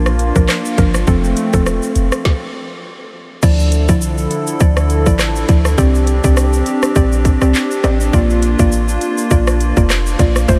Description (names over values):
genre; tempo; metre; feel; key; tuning
dancehall; 102 BPM; 4/4; swing 56% on 16ths; unclear; A4 = 440 Hz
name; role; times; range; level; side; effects
mallet-like synth pluck; accompaniment; 0.0-10.6 s; F3 to D5; -22 LUFS; equal; chorus
hollow soft pad; sustained chords; 0.0-10.6 s; D3 to A4; -22 LUFS; equal; chorus, sidechain pumping
clean 808-style bass; bass; 0.0-10.6 s; E1 to D2; -18 LUFS; equal; none
island pop drum kit; drums; 0.1-10.6 s; crash cymbal, handclaps, hi-hat, kick drum, rim click, shaker, snare drum; -19 LUFS; equal; none
tube shaker and timbales; percussion; 3.4-10.6 s; none; -33 LUFS; equal; none
room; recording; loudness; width
light reverb, digital ambience; none; -14 LUFS; mono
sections
0.0-3.4 A section; 3.4-10.6 B section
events
stop 2.3-3.4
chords
0.0 Bb; 1.1 F; 3.4 Dmadd9; 5.8 Csus2; 8.1 Bb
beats
0.49 | 1.08 1.66 2.25 2.84 | 3.43 4.02 4.61 5.19 | 5.78 6.37 6.96 7.55 | 8.13 8.72 9.31 9.90 | 10.49